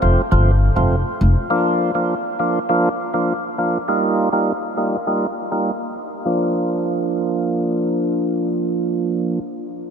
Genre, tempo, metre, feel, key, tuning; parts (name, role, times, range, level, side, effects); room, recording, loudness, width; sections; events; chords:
dancehall; 101 BPM; 4/4; straight; Bb major; A4 = 440 Hz
percussive tonewheel organ; accompaniment; 0.0-9.4 s; F3 to F4; -18 LUFS; right 1 dB; slow rotary speaker, low-pass filter
upright bass; bass; 0.0-1.3 s; F1 to G1; -15 LUFS; equal
moderate huge ambient reverb, RT60 8.4 s; dreamy mix soaked in reverb; -17 LUFS; side -7 dB against mid
0.0-6.3 A section; 6.3-8.6 B section
filter sweep on tonewheel organ 0.0-6.3
0.0 F; 1.5 Bb; 3.9 Ebadd9; 6.3 Bb